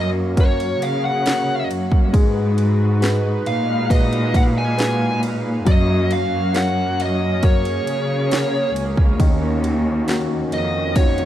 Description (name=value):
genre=pop ballad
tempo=68 BPM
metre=4/4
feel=straight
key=F# major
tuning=A4 = 440 Hz
part: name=bluesy overdriven lead guitar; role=melody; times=0.0-11.3 s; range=C#5 to G#5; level=-24 LUFS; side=equal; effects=distortion, tape echo
part: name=warm baby grand piano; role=accompaniment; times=0.0-11.3 s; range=D#3 to C#5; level=-26 LUFS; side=left 3 dB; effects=none
part: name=warm analog pad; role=sustained chords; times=0.0-11.3 s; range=D#3 to E#5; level=-26 LUFS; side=right 2 dB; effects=chorus
part: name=muted symphonic cello section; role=bass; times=0.0-11.3 s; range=C#2 to C#3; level=-21 LUFS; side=equal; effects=none
part: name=house drum kit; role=drums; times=0.4-11.3 s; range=kick drum, ride cymbal, snare drum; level=-18 LUFS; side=equal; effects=overdrive
room=little or no reverb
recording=dark, warm production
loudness=-16 LUFS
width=side -12 dB against mid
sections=0.0-11.3 A section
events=none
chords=0.0 F#; 2.1 G#m7; 5.7 F#; 9.2 D#m7